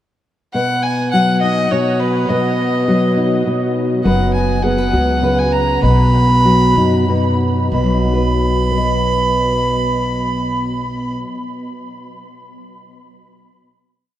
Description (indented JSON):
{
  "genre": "acoustic folk duo or small band",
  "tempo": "61-68 BPM (dotted quarters)",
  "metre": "6/8",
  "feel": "straight",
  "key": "B major",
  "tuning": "A4 = 441 Hz",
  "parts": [
    { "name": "warm fiddle", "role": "melody", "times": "0.5-11.2 s", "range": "B4 to B5", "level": "-19 LUFS", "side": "right 1 dB", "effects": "none" },
    { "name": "nylon-string guitar", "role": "accompaniment", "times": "0.5-12.2 s", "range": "B2 to D#5", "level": "-16 LUFS", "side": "equal", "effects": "none" },
    { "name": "upright bass", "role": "bass", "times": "4.1-11.1 s", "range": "F#1 to F#2", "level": "-18 LUFS", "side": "equal", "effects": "none" }
  ],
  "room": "wet huge ambient reverb, RT60 8.0 s",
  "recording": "in a vast, echoing space",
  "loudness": "-13 LUFS",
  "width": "side -12 dB against mid",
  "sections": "0.5-7.7 A section; 7.7-11.7 final chord",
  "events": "slowing down 4.1-7.7",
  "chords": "0.5 B; 4.1 F#sus4; 5.8 B",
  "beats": "| 0.54 1.42 | 2.29 3.17 | 4.05 4.93 | 5.83 6.76 | 7.72 8.71 | 9.70 10.68"
}